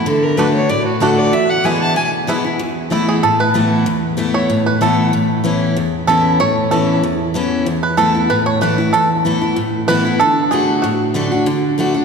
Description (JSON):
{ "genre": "bluegrass", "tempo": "189 BPM", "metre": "4/4", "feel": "swing 53% on 8ths", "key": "E mixolydian", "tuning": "A4 = 440 Hz", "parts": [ { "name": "picked steel-string acoustic guitar", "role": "accompaniment", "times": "0.0-12.0 s", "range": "E2 to F#4", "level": "-15 LUFS", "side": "left 1 dB", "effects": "none" }, { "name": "rich fiddle", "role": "melody", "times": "0.1-2.1 s", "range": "F#4 to A5", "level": "-19 LUFS", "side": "left 1 dB", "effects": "none" }, { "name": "bluegrass banjo", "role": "melody", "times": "0.4-11.1 s", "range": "A3 to C#5", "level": "-18 LUFS", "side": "right 2 dB", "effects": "none" } ], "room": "wet church reverb, RT60 3.7 s", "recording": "recorded in a church or concert hall", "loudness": "-13 LUFS", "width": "side -5 dB against mid", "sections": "0.0-2.6 A section; 2.6-12.0 B section", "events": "five-string banjo solo 2.6-12.0", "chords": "0.1 D; 1.3 E; 2.6 Esus4; 5.1 Aadd9; 7.7 Esus4; 10.2 D" }